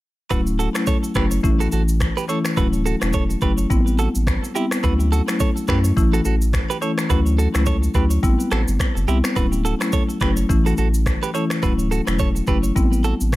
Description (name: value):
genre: afrobeats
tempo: 106 BPM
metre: 4/4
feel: swing 58% on 16ths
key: D major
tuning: A4 = 440 Hz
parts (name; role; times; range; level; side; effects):
- marimba with medium mallets; accompaniment; 0.3-13.4 s; E3 to E4; -22 LUFS; left 2 dB; plate reverb
- direct-recorded clean electric guitar; riff; 0.3-13.1 s; E4 to C#5; -27 LUFS; right 6 dB; digital delay
- saturated sub bass; bass; 0.3-13.4 s; D1 to F#2; -20 LUFS; equal; none
- afro-pop drum kit; drums; 0.3-13.4 s; finger snaps, kick drum, rim click, shaker; -22 LUFS; equal; none
room: light reverb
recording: none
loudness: -17 LUFS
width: side -17 dB against mid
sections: 0.3-13.4 A section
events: none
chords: 0.3 Dmaj7; 1.4 A; 2.6 Dmaj7; 3.7 Am7; 4.8 Dmaj7; 6.0 A; 7.1 Dmaj7; 8.2 Am7; 9.4 Dmaj7; 10.5 A; 11.6 Dmaj7; 12.8 Am7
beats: | 0.31 0.87 1.44 2.00 | 2.57 3.14 3.70 4.27 | 4.83 5.40 5.97 6.53 | 7.10 7.67 8.23 8.80 | 9.36 9.93 10.49 11.06 | 11.63 12.19 12.76 13.32